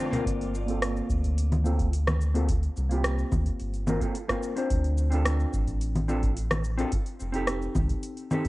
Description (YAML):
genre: sunset chillout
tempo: 108 BPM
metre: 4/4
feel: straight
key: G minor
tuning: A4 = 441 Hz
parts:
  - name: vintage hollow-body jazz guitar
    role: accompaniment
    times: 0.0-8.5 s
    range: Bb3 to C5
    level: -31 LUFS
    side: equal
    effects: auto-pan, low-pass filter, tape echo
  - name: smooth R&B drum kit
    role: drums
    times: 0.1-8.5 s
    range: cabasa, congas, hi-hat, rim click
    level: -31 LUFS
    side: equal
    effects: none
  - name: warm sub bass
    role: bass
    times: 0.3-7.9 s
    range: F1 to D2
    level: -27 LUFS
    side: equal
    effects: none
  - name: electronic kick drum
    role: drums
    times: 0.3-8.5 s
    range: none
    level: -29 LUFS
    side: equal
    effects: none
room: light reverb, digital ambience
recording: worn, warbling old tape, cassette tape, warbly pitch drift, nothing above 11.0 kHz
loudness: -25 LUFS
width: side -19 dB against mid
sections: 0.3-8.5 A section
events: filter sweep on hollow-body jazz guitar 0.3-8.5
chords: 0.3 Gm11; 4.7 Dm7; 6.9 F7